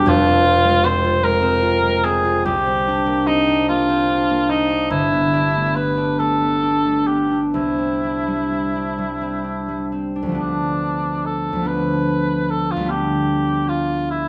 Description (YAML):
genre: classical, impressionist duo for cor anglais and harp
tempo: 41-52 BPM (dotted quarters)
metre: 6/8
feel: rubato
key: D minor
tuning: A4 = 440 Hz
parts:
  - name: mellow cor anglais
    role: melody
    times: 0.0-14.3 s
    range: D4 to C5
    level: -22 LUFS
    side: equal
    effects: none
  - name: concert harp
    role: accompaniment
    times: 0.0-14.3 s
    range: E1 to F#4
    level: -22 LUFS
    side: equal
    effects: none
room: moderate recital hall reverb, RT60 1.5 s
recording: none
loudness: -19 LUFS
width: mono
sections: 0.0-10.4 A section; 10.4-14.3 B section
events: none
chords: 0.1 Fm; 2.5 Csus2; 4.9 G69; 7.5 Cadd9; 10.4 Dm6; 12.9 Gadd9/D